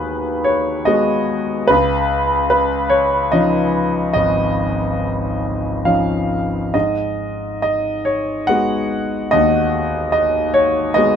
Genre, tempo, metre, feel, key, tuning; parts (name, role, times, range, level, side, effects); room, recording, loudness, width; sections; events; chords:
classical, lyrical solo piano; 71 BPM; 3/4; uneven beats, rubato; G# dorian; A4 = 440 Hz
clear grand piano; solo; 0.0-11.2 s; G#1 to F#5; -15 LUFS; equal
moderate studio reverb, RT60 0.6 s; minimal, uncompressed stereo recording; -15 LUFS; side -8 dB against mid
0.0-11.2 A section
0.0 G#m7; 1.7 C#add9; 6.7 G#m7